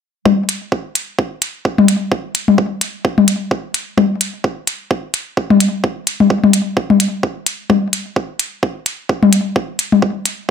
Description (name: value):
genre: minimal techno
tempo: 129 BPM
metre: 4/4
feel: swing 57% on 16ths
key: none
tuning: none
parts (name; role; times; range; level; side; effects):
- electronic kick drum; drums; 0.3-10.1 s; none; -17 LUFS; right 2 dB; high-pass filter on kick, studio reverb
- electronic toms; percussion; 0.3-10.0 s; none; -12 LUFS; left 4 dB; overdrive, studio reverb
- electronic hi-hat; drums; 0.5-10.4 s; none; -18 LUFS; equal; studio reverb
room: light reverb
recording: none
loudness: -14 LUFS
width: side -7 dB against mid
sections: 0.3-10.5 A section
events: none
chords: none